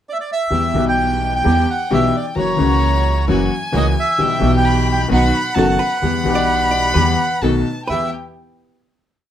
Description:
tango; 131 BPM; 4/4; rubato; E minor; A4 = 441 Hz
bandoneon; melody; 0.1-8.1 s; C#5 to G5; -19 LUFS; right 2 dB
warm violin; second line; 0.5-8.1 s; G5 to B5; -23 LUFS; left 2 dB
clear upright piano; accompaniment; 0.5-8.1 s; F#1 to G4; -19 LUFS; left 4 dB
dark studio string section; stabs; 0.5-8.1 s; A#3 to A4; -26 LUFS; right 3 dB
upright bass; bass; 0.5-8.1 s; F#1 to E2; -20 LUFS; right 2 dB
archtop guitar, miked and amplified; second line; 5.6-8.1 s; A4 to D5; -26 LUFS; right 1 dB
moderate studio reverb, RT60 0.6 s; -14 LUFS; side -10 dB against mid
0.0-0.5 pickup bar; 0.5-7.9 A section; 7.9-9.3 final chord
0.0 N.C.; 0.5 Em; 2.4 F#7; 4.2 Em/B; 5.1 B; 6.0 Em; 7.4 B7; 7.9 Em

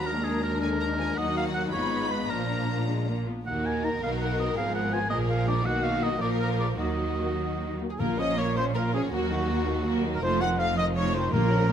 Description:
quick classical-period movement for symphony orchestra; 98-111 BPM (dotted quarters); 6/8; rubato; Eb minor, Bb minor from 8.0 s; A4 = 440 Hz
rich studio violin section; melody; 0.0-11.7 s; F#4 to Cb6; -34 LUFS; left 4 dB
clear oboe; second line; 0.0-7.8 s; Ab4 to Bb5; -32 LUFS; equal
warm studio violin section; second line; 0.0-11.7 s; Bb3 to Db5; -35 LUFS; left 3 dB
rich studio viola section; accompaniment; 0.0-11.7 s; D3 to Db4; -32 LUFS; right 3 dB
warm French horn section; sustained chords; 0.0-7.9 s; Gb3 to Ab4; -34 LUFS; left 6 dB
rich studio cello section; bass; 0.0-11.7 s; Eb2 to Eb3; -33 LUFS; right 1 dB
rich studio double bass section; bass; 0.0-11.7 s; F1 to Eb2; -32 LUFS; right 2 dB
mellow trumpet; stabs; 7.9-11.7 s; Gb4 to Gb5; -30 LUFS; right 1 dB
timpani; percussion; 8.0-8.5, 11.3-11.7 s; Bb2; -30 LUFS; left 2 dB
moderate recital hall reverb, RT60 1.6 s; close, detailed microphones; -24 LUFS; side -9 dB against mid
0.0-8.0 A section; 8.0-11.7 B section
0.1 Bb7/Eb; 1.2 Ebm; 1.7 Abm; 2.3 Bb; 3.5 Ebm; 4.0 B; 4.6 Fdim/Ab; 5.1 Bb7; 5.7 Bmaj7; 6.2 Bb5; 6.8 Ebm; 8.0 Bbm; 9.1 Ebm; 10.2 F7

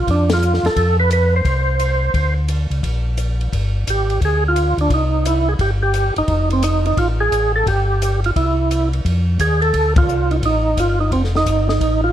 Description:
soul jazz organ trio; 174 BPM; 4/4; swing 65% on 8ths; F mixolydian; A4 = 440 Hz
percussive tonewheel organ; melody; 0.0-12.1 s; C4 to C5; -18 LUFS; right 2 dB; slow rotary speaker, overdrive, chorus vibrato
mellow tonewheel organ; bass; 0.0-12.1 s; F1 to F2; -18 LUFS; equal; slow rotary speaker
compact cocktail drum kit; drums; 0.1-11.9 s; hi-hat, kick drum, ride cymbal, snare drum; -24 LUFS; left 2 dB
light reverb; dark, warm production; -15 LUFS; side -11 dB against mid
0.0-9.0 A section; 9.0-12.1 A section
band accent 0.2, 9.9
0.0 Bm7b5 (rootless); 0.8 F5; 2.1 Bb; 3.5 G5; 4.9 C5; 6.3 F; 7.7 N.C.; 8.4 C; 9.0 F13

